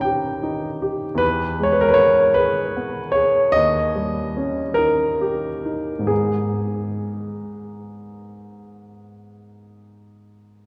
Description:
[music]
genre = classical, romantic nocturne for solo piano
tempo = 43-52 BPM (dotted quarters)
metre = 12/8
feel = rubato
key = G# minor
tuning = A4 = 439 Hz
[part]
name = warm grand piano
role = solo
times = 0.0-10.7 s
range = D#2 to A#5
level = -21 LUFS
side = equal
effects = none
[sound]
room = wet cathedral reverb, RT60 4.1 s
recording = recorded in a church or concert hall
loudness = -20 LUFS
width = mono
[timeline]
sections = 0.0-10.7 A section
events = none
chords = 0.0 D#7; 1.2 E; 3.6 D#7; 6.1 G#m

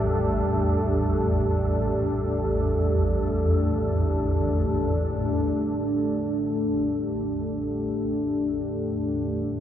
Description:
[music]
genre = dark ambient drone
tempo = free time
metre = none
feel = none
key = unclear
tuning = A4 = 440 Hz
[part]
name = deep dark ambient pad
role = sustained chords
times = 0.0-9.6 s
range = A3 to A4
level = -25 LUFS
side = equal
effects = chorus, built-in reverb
[part]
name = bronze singing bowl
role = arpeggios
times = 0.0-4.1 s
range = G3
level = -33 LUFS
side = equal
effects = diffuse ambient delay
[part]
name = swarming drone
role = drone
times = 0.0-9.6 s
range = A1 to E2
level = -27 LUFS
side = equal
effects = built-in reverb
[part]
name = wind-like tuned noise texture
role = texture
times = 0.0-5.6 s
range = A3 to A4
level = -37 LUFS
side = equal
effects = built-in reverb, ensemble chorus
[sound]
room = wet lush hall reverb, RT60 3.2 s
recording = dreamy mix soaked in reverb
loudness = -22 LUFS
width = side -10 dB against mid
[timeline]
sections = 0.0-5.6 A section; 5.6-9.6 B section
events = none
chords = 0.0 A5

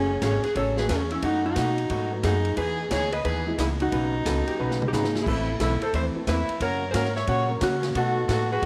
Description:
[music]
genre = country, western swing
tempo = 178 BPM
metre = 4/4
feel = swing 64% on 8ths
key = unclear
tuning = A4 = 440 Hz
[part]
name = hollow-body jazz guitar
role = melody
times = 0.0-8.7 s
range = C#4 to F#5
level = -30 LUFS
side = equal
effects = none
[part]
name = rich fiddle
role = second line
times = 0.0-8.7 s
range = C#4 to C#5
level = -34 LUFS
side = equal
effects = none
[part]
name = vintage hollow-body jazz guitar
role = accompaniment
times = 0.0-8.7 s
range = B2 to B4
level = -34 LUFS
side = equal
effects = none
[part]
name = upright bass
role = bass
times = 0.0-8.7 s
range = F#1 to C#3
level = -31 LUFS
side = equal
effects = none
[part]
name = swinging big-band drum kit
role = drums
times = 0.2-8.7 s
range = crash cymbal, hi-hat, kick drum, ride cymbal, snare drum, toms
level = -35 LUFS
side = equal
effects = none
[part]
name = warm upright piano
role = accompaniment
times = 0.8-8.5 s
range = E3 to A#4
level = -38 LUFS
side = equal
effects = none
[part]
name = clean lap steel guitar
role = second line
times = 4.3-4.9 s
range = G4 to B4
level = -36 LUFS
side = equal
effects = none
[sound]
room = light reverb, studio reverb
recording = none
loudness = -25 LUFS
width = mono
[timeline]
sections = 0.0-8.7 A section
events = drum fill 4.6-5.3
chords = 0.0 F#madd9; 1.2 B7/F#; 2.6 Emaj7; 3.9 Badd9; 5.3 Amadd9; 6.6 F#; 8.0 B7

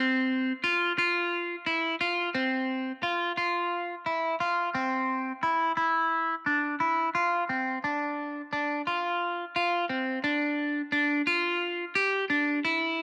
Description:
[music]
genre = progressive instrumental, progressive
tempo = 175 BPM (eighths)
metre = 7/8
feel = straight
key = D minor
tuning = A4 = 439 Hz
[part]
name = clean electric guitar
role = solo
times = 0.0-13.0 s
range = C4 to G4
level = -28 LUFS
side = equal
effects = phaser, cassette tape
[sound]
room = moderate spring reverb, RT60 2.1 s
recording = home recording on cassette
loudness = -28 LUFS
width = mono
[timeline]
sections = 0.0-7.1 A section; 7.1-13.0 B section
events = none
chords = none

